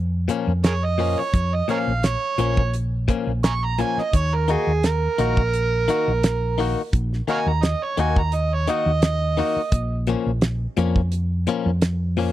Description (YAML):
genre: straight-eighth soul blues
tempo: 86 BPM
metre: 4/4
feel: swing 54% on 16ths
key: Bb minor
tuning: A4 = 440 Hz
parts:
  - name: hollow-body short-scale fingered electric bass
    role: bass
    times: 0.0-12.3 s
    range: Bb1 to F2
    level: -22 LUFS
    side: equal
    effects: none
  - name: direct-recorded clean electric guitar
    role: stabs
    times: 0.3-12.3 s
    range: Bb2 to Gb4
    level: -24 LUFS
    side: left 7 dB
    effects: vibrato effect
  - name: damped 70s drum kit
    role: drums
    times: 0.3-12.3 s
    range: hi-hat, kick drum, snare drum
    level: -21 LUFS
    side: right 1 dB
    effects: none
  - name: overdriven harmonica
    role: second line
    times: 0.7-10.0 s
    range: Ab4 to Db6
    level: -24 LUFS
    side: right 5 dB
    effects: none
room: studio reverb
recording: dry, close 1970s-style studio recording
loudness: -19 LUFS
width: side -14 dB against mid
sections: 0.0-12.3 A section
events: harmonica solo 0.0-12.3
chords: 0.0 Bbm; 4.1 Ebm; 9.7 Bbm